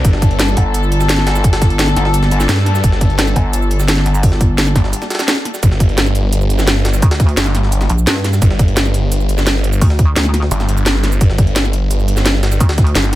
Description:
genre	dark technical drum and bass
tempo	172 BPM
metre	4/4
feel	straight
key	unclear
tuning	A4 = 439 Hz
part	warm studio string section	sustained chords	0.0-5.6 s	G3 to A4	-22 LUFS	left 3 dB	sidechain pumping
part	snarling distorted saw bass	bass	0.0-13.2 s	G1 to G2	-15 LUFS	equal	distortion, tube saturation
part	drum and bass drum kit	drums	0.0-13.2 s	cabasa, hi-hat, snare drum	-18 LUFS	equal	none
part	electronic kick drum	drums	0.0-12.8 s	none	-11 LUFS	equal	overdrive
part	jungle sampler-style drum kit	drums	0.0-13.2 s	hi-hat, snare drum	-24 LUFS	equal	high-pass filter on hats, high-pass filter on snare, high-pass filter on room
part	pulsing pluck wobble bass	bass	0.6-4.7, 7.0-10.5, 12.6-12.9 s	G1 to G2	-14 LUFS	equal	chorus
room	little or no reverb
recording	none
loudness	-11 LUFS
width	side -15 dB against mid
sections	0.0-5.6 A section; 5.6-13.2 A section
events	drop 0.0-5.6, 5.6-13.2; break 4.9-5.6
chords	0.0 G5

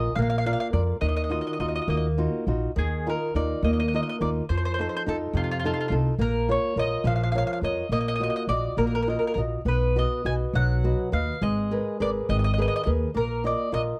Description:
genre	italian folk, Italian serenade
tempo	69 BPM (dotted quarters)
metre	6/8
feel	rubato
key	Eb harmonic minor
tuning	A4 = 440 Hz
part	mandolin	melody	0.0-13.8 s	F4 to Ab5	-32 LUFS	equal	none
part	flamenco guitar	accompaniment	0.0-14.0 s	C3 to Eb5	-30 LUFS	equal	none
part	upright bass	bass	0.0-13.9 s	Ab1 to F2	-28 LUFS	equal	none
room	studio ambience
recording	dry, close 1970s-style studio recording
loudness	-26 LUFS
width	mono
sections	0.0-2.8 A section; 2.8-14.0 A section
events	none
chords	0.2 Bb; 1.0 Ebmadd9; 2.8 Ebsus2; 4.5 F7; 6.2 Bbm; 7.9 Ebmadd9/Bb; 9.7 B; 11.4 Abmadd9; 13.1 Bbsus4

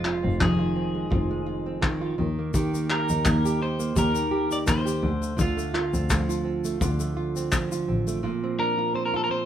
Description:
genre	acoustic pop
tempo	84 BPM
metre	4/4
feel	swing 55% on 16ths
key	Bb major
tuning	A4 = 440 Hz
part	electric guitar at the edge of break-up	melody	0.0-9.5 s	F4 to D5	-30 LUFS	equal	none
part	nylon-string guitar	accompaniment	0.0-9.5 s	F2 to G4	-27 LUFS	right 2 dB	none
part	warm double bass	bass	0.0-8.2 s	F1 to Eb2	-27 LUFS	left 1 dB	none
part	cloth-damped thuddy drum kit	drums	0.0-7.7 s	handclaps, kick drum	-26 LUFS	left 1 dB	none
part	tube shaker	percussion	2.5-8.2 s	none	-39 LUFS	left 6 dB	none
room	moderate studio reverb, RT60 0.9 s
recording	band playing live in one room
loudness	-23 LUFS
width	side -10 dB against mid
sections	0.0-8.2 A section; 8.2-9.5 B section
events	none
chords	0.0 Fm7; 2.2 Eb; 5.0 Dm7; 8.2 Bbadd9

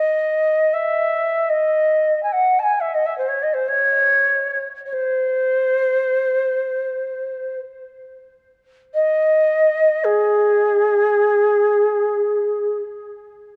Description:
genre	world meditative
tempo	free time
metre	none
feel	none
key	unclear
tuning	A4 = 439 Hz
part	mellow Native American-style cedar flute	solo	0.0-12.8 s	G#4 to A5	-19 LUFS	equal	none
room	wet spring reverb, RT60 2.7 s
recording	dark, warm production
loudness	-19 LUFS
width	mono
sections	0.0-13.6 A section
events	none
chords	none

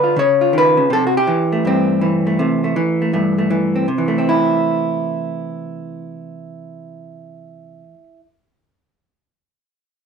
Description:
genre	solo jazz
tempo	162 BPM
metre	4/4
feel	swing 65% on 8ths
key	C major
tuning	A4 = 441 Hz
part	vintage hollow-body jazz guitar	solo	0.0-8.2 s	G2 to Db5	-16 LUFS	equal	none
room	light reverb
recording	close, detailed microphones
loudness	-14 LUFS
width	side -6 dB against mid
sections	0.0-3.9 A section; 3.9-6.8 B section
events	none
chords	0.2 Db9; 0.9 C6

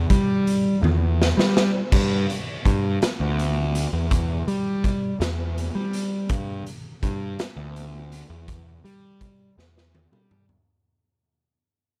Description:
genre	psychedelic rock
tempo	55 BPM (dotted quarters)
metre	6/8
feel	straight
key	unclear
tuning	A4 = 441 Hz
part	fuzz picked electric bass	bass	0.0-10.4 s	D2 to G3	-25 LUFS	equal	overdrive
part	raw garage drum kit	drums	0.1-10.7 s	crash cymbal, hi-hat, kick drum, snare drum, toms	-27 LUFS	equal	none
room	little or no reverb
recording	none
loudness	-23 LUFS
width	mono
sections	0.0-1.9 A section; 1.9-10.7 B section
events	drum fill 0.8-1.9, 9.6-10.7; fade-out 1.9-10.7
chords	none

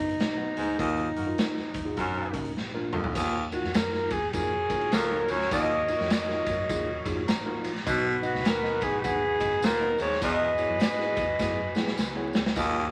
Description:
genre	uptempo 1960s-style soul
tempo	102 BPM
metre	4/4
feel	swing 62% on 8ths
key	Eb minor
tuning	A4 = 440 Hz
part	breathy alto saxophone	melody	0.0-11.7 s	D#4 to Eb5	-30 LUFS	equal	none
part	mellow tine electric piano	accompaniment	0.0-12.9 s	Bb2 to Bb5	-37 LUFS	equal	none
part	vintage muted fingered electric bass	bass	0.0-12.9 s	F#1 to G#2	-42 LUFS	equal	none
part	raw garage drum kit	drums	0.1-12.7 s	crash cymbal, hi-hat, kick drum, ride cymbal, snare drum, toms	-33 LUFS	equal	none
part	raspy baritone saxophone	riff	0.6-12.9 s	Eb2 to B2	-31 LUFS	equal	none
part	clear horn section	second line	1.2-12.9 s	Bb3 to Db5	-38 LUFS	equal	none
part	tambourine	percussion	3.2-12.7 s	none	-47 LUFS	equal	none
room	moderate studio reverb, RT60 0.6 s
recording	vinyl crackle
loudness	-27 LUFS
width	mono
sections	0.0-3.2 A section; 3.2-12.9 B section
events	band accent 0.8-3.2; drum fill 2.6-3.2, 11.4-12.6; tine electric piano fill 7.0-7.9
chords	0.0 B; 0.8 Ebmadd9; 2.0 Gb; 2.6 Bb; 3.2 Ebmadd9; 7.9 B; 10.2 Eadd9

